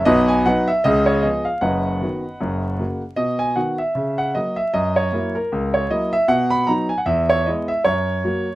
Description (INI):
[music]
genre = jazz, stride piano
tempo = 154 BPM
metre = 4/4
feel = swing 58% on 8ths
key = B major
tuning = A4 = 440 Hz
[part]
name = warm concert grand piano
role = solo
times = 0.0-8.6 s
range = F#1 to B5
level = -17 LUFS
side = equal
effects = none
[sound]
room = moderate studio ambience, RT60 0.5 s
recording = rough home demo mix, vinyl crackle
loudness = -17 LUFS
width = side -17 dB against mid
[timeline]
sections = 0.0-3.2 A section; 3.2-8.6 A section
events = none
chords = 0.1 B; 0.9 C#7; 1.6 B/F#; 2.4 F#; 3.2 B; 4.0 F#/C#; 6.3 B; 7.1 E; 7.9 F#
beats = | 0.07 0.46 0.85 1.24 | 1.63 2.02 2.41 2.79 | 3.18 3.57 3.96 4.35 | 4.74 5.13 5.52 5.91 | 6.30 6.69 7.08 7.47 | 7.86 8.25